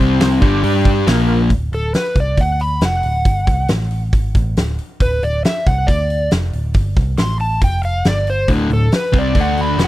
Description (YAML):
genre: blues rock power trio and southern rock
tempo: 138 BPM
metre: 4/4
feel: straight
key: unclear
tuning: A4 = 441 Hz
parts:
  - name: tonewheel organ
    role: sustained chords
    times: 0.0-1.4 s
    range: Bb3 to G5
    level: -25 LUFS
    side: right 4 dB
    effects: slow rotary speaker, chorus vibrato
  - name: overdriven electric guitar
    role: riff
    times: 0.0-1.5, 8.5-9.9 s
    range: D2 to G4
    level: -15 LUFS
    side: left 1 dB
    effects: none
  - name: vintage muted picked electric bass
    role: bass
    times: 0.0-9.9 s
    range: D1 to G2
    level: -19 LUFS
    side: equal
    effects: none
  - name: huge arena drum kit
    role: drums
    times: 0.2-9.9 s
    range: hi-hat, kick drum, snare drum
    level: -17 LUFS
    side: equal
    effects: none
  - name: overdriven slide guitar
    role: melody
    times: 1.7-9.9 s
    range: A4 to C6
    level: -20 LUFS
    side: equal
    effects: none
room: little or no reverb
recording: dry, close 1970s-style studio recording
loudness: -14 LUFS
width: side -16 dB against mid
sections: 0.0-1.5 A section; 1.5-9.9 B section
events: none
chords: 0.0 C5; 0.4 G5; 1.1 Bb5; 1.5 D; 3.7 N.C.; 4.1 D5; 7.2 Am; 7.6 Fsus2; 8.1 G5; 8.5 D5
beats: 0.20 0.64 1.07 | 1.51 1.95 2.38 2.82 | 3.25 3.69 4.13 4.57 | 5.00 5.44 5.88 6.31 | 6.75 7.18 7.62 8.05 | 8.49 8.93 9.36 9.80